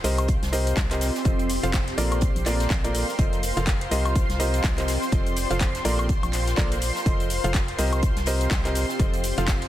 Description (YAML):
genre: piano house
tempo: 124 BPM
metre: 4/4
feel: swing 58% on 16ths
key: F mixolydian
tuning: A4 = 440 Hz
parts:
  - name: analog string pad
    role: sustained chords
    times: 0.0-9.7 s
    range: C5 to C6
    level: -33 LUFS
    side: left 2 dB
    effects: ensemble chorus, sidechain pumping
  - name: clear concert grand piano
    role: riff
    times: 0.0-9.5 s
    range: F3 to F5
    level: -29 LUFS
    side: right 1 dB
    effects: sidechain pumping, tape echo
  - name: organ-like FM bass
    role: bass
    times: 0.0-9.7 s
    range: F1 to C2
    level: -26 LUFS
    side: equal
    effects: sidechain pumping
  - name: garage drum kit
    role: drums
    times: 0.0-9.7 s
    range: handclaps, hi-hat, shaker, woodblock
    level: -31 LUFS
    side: left 2 dB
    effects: studio reverb
  - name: jazz brush drum kit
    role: drums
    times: 0.0-9.7 s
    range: hi-hat, snare drum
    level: -39 LUFS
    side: right 3 dB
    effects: none
  - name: electronic kick drum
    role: drums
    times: 0.3-9.6 s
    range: none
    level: -24 LUFS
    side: equal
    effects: studio reverb
room: light reverb, studio ambience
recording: dense, heavily limited modern master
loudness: -21 LUFS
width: side -13 dB against mid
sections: 0.0-9.7 A section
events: none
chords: 0.0 Cm7; 1.3 F7; 2.0 Bbmaj7; 3.2 F7; 3.9 Cm7; 5.1 F7; 5.8 Bbmaj7; 7.1 F7; 7.8 Cm7; 9.0 F7